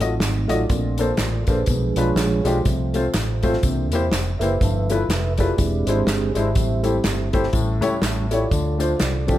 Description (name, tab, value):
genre	uptempo gospel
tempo	123 BPM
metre	4/4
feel	swing 58% on 8ths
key	F major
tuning	A4 = 440 Hz
part	dark baby grand piano	accompaniment	0.0-9.4 s	G2 to Eb5	-24 LUFS	left 3 dB	none
part	mellow tonewheel organ	sustained chords	0.0-9.4 s	E3 to E5	-26 LUFS	right 4 dB	fast rotary speaker
part	vintage muted fingered electric bass	bass	0.0-9.4 s	E1 to E2	-23 LUFS	equal	none
part	natural country drum kit	drums	0.0-9.4 s	hi-hat, kick drum, snare drum	-24 LUFS	equal	none
part	tambourine and handclaps	percussion	0.0-9.4 s	none	-33 LUFS	right 1 dB	none
room	light reverb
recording	none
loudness	-18 LUFS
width	side -13 dB against mid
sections	0.0-9.4 A section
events	tonewheel organ solo 0.0-9.4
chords	0.0 F7b9; 0.7 Bbmaj9; 1.7 Bdim7; 2.7 F/C; 3.6 C7; 4.6 G13; 5.6 E7alt; 6.6 Am7; 7.5 A7; 8.5 Dm7